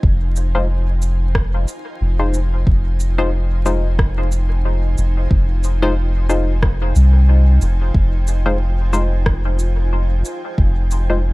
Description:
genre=ambient dub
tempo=91 BPM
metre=4/4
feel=swing 56% on 16ths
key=F minor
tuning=A4 = 440 Hz
part: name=granular cloud pad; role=sustained chords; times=0.0-11.3 s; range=Eb4 to Ab5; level=-31 LUFS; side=right 1 dB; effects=built-in reverb
part: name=soft dub sub bass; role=bass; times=0.0-11.3 s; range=F1 to C2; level=-15 LUFS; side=equal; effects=none
part: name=electronic kick drum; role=drums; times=0.0-10.7 s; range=none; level=-17 LUFS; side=equal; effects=none
part: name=electronic cabasa and rim click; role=drums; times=0.4-11.1 s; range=none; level=-27 LUFS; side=equal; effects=dub echo
part: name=filtered dub chord stab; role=stabs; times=0.5-11.2 s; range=Ab3 to C5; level=-24 LUFS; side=left 2 dB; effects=chorus, dub echo
room=digital ambience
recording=dark, warm production, vinyl crackle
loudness=-14 LUFS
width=side -22 dB against mid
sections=0.0-11.3 A section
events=none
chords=0.0 Fm7

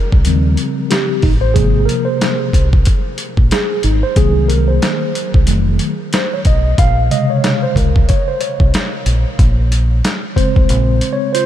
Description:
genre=hip hop, jazz-hop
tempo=92 BPM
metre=4/4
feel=swing 58% on 16ths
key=unclear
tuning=A4 = 439 Hz
part: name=mellow tine electric piano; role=accompaniment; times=0.0-11.5 s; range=C3 to F5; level=-17 LUFS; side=equal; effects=medium stereo tremolo
part: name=deep dub fingered electric bass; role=bass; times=0.1-11.0 s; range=F1 to Eb2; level=-14 LUFS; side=equal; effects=none
part: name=dusty soul sampler-style drum kit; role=drums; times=0.1-11.5 s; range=hi-hat, kick drum, snare drum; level=-16 LUFS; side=equal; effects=overdrive
room=light reverb, digital ambience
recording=none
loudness=-12 LUFS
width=side -11 dB against mid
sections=0.0-11.5 A section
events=tine electric piano solo 0.0-11.5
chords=0.3 Eb13; 1.6 Ab69; 4.2 Cm7b5; 5.5 F7b9; 6.8 Bbm7

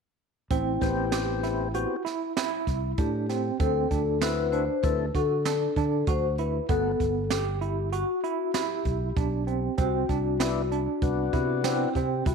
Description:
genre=progressive instrumental, band music in an uneven meter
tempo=97 BPM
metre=5/4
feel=straight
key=A dorian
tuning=A4 = 439 Hz
part: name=vibraphone with soft mallets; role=second line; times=0.5-12.3 s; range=E4 to C5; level=-30 LUFS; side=left 10 dB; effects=none
part: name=overdriven tine electric piano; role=arpeggios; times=0.5-12.3 s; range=B3 to G4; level=-30 LUFS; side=right 13 dB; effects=fast tremolo
part: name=fingered electric bass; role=bass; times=0.5-12.3 s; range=G1 to D3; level=-30 LUFS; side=equal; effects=none
part: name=jazz brush drum kit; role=drums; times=0.5-12.3 s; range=hi-hat, kick drum, snare drum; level=-30 LUFS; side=right 2 dB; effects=none
part: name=tonewheel organ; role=accompaniment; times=0.8-11.9 s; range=A3 to A4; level=-31 LUFS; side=left 12 dB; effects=slow rotary speaker
room=moderate plate reverb, RT60 1.3 s, studio reverb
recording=1960s-style stereo with parts hard left and right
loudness=-24 LUFS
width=side -5 dB against mid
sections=0.5-12.3 A section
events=none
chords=0.5 Am7; 3.6 D7; 6.7 Gmaj7; 9.8 Cmaj7

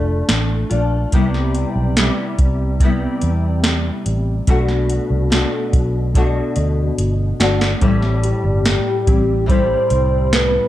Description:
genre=indie pop, bedroom pop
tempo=72 BPM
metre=4/4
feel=straight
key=A dorian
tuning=A4 = 437 Hz
part: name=nylon-string guitar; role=accompaniment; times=0.0-10.7 s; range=A2 to F#4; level=-20 LUFS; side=left 2 dB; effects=ensemble chorus, warbly pitch drift
part: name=vintage muted fingered electric bass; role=bass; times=0.0-10.6 s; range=F1 to E2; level=-19 LUFS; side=equal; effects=none
part: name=soft vintage rhythm box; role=drums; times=0.3-10.5 s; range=hi-hat, kick drum, snare drum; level=-18 LUFS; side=right 1 dB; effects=overdrive
part: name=soft octave-layered synth lead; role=melody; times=8.2-10.7 s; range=G4 to C5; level=-18 LUFS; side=left 1 dB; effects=tremolo, lush chorus
room=light reverb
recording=dark, warm production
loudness=-15 LUFS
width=side -13 dB against mid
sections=0.0-7.8 A section; 7.8-10.7 B section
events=drum fill 6.1-7.8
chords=0.0 Bbmaj7; 1.1 Cmaj7; 4.5 Bm7; 7.8 Am7

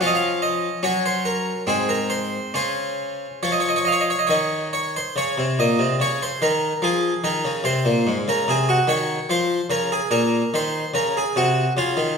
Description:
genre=classical, baroque-style suite movement for harpsichord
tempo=71 BPM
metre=3/4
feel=uneven beats, rubato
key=Db major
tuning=A4 = 440 Hz
part: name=harpsichord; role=solo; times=0.0-12.2 s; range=Ab2 to F5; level=-19 LUFS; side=equal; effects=none
room=wet recital hall reverb, RT60 1.6 s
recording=minimal, uncompressed stereo recording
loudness=-19 LUFS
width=side -5 dB against mid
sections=0.0-5.2 A section; 5.2-12.2 B section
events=none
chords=0.0 Db/F; 0.8 Gb; 1.7 Ab; 2.5 Db; 7.6 Ab; 9.3 Db/F; 10.1 Bbm

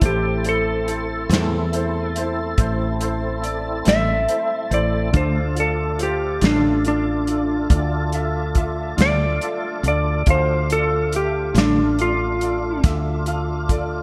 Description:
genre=slow blues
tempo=47 BPM (dotted quarters)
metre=12/8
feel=straight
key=unclear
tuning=A4 = 442 Hz
part: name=clean lap steel guitar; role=melody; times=0.0-12.8 s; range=D4 to E5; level=-24 LUFS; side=equal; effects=subtle chorus
part: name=clear upright piano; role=accompaniment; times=0.0-14.0 s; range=E4 to F5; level=-31 LUFS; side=equal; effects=ensemble chorus
part: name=tonewheel organ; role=sustained chords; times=0.0-14.0 s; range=A3 to A4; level=-31 LUFS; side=equal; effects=slow rotary speaker, overdrive, chorus vibrato
part: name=woody fretless electric bass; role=bass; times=0.0-14.0 s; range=A1 to E2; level=-26 LUFS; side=equal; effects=none
part: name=warm soul drum kit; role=drums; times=0.0-13.9 s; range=hi-hat, kick drum, snare drum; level=-23 LUFS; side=equal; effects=gated reverb
part: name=semi-hollow electric guitar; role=accompaniment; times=1.3-11.8 s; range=A2 to F4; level=-30 LUFS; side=equal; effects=none
room=moderate plate reverb, RT60 3.0 s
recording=bright 1980s-style digital production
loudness=-20 LUFS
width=mono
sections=0.0-14.0 A section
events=electric slide guitar solo 0.0-14.0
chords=0.0 Am; 5.1 Dm

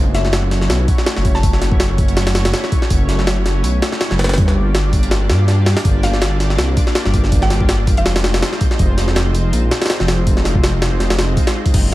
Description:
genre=drum and bass, jungle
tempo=163 BPM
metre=4/4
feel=swing 55% on 16ths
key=unclear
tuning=A4 = 440 Hz
part: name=lush unison pad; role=sustained chords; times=0.0-11.9 s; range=G#3 to D5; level=-24 LUFS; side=equal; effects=chorus
part: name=dark detuned saw bass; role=bass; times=0.0-11.9 s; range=F1 to G2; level=-16 LUFS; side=equal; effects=none
part: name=mallet-like synth pluck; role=melody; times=0.1-1.9, 6.0-8.1 s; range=E5 to A5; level=-27 LUFS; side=left 1 dB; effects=chorus, dub echo
part: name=jungle sampler-style drum kit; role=drums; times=0.1-11.8 s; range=crash cymbal, hi-hat, kick drum, snare drum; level=-16 LUFS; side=equal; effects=none
room=little or no reverb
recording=vinyl crackle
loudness=-13 LUFS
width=side -17 dB against mid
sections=0.0-11.7 A section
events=drop 0.0-11.7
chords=0.0 F#m7; 4.4 Gm7; 8.1 Fm7

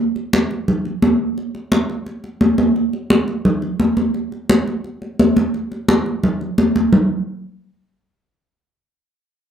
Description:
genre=jazz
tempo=173 BPM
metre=4/4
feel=straight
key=none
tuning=none
part: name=congas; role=percussion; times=0.2-7.0 s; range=none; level=-16 LUFS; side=equal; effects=none
room=moderate studio ambience, RT60 0.5 s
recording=none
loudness=-16 LUFS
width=side -9 dB against mid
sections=0.0-6.9 A section; 6.9-8.3 B section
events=none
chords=none

